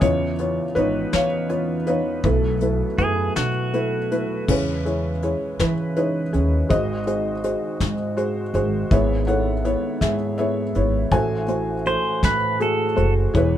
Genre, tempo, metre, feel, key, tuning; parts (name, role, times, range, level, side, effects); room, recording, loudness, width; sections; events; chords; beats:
acoustic folk-pop ballad; 54 BPM (dotted quarters); 6/8; straight; E major; A4 = 441 Hz
felt-muted upright piano; melody; 0.0-13.6 s; G#1 to G#5; -22 LUFS; equal
upright bass; bass; 0.0-13.6 s; E1 to E3; -24 LUFS; equal
soft brush drum kit; drums; 0.0-13.5 s; crash cymbal, hi-hat, kick drum, snare drum; -25 LUFS; left 1 dB
pedal steel guitar; second line; 3.0-4.4, 11.9-13.1 s; F#4 to C5; -24 LUFS; right 2 dB
little or no reverb; minimal, uncompressed stereo recording; -19 LUFS; side -11 dB against mid
0.0-4.5 A section; 4.5-13.6 B section
0.0 C#7; 2.2 B7sus4; 4.5 E6; 6.7 G#7; 11.1 Am6
| 0.02 1.13 | 2.24 3.36 | 4.48 5.60 | 6.71 7.81 | 8.91 10.02 | 11.12 12.23 | 13.35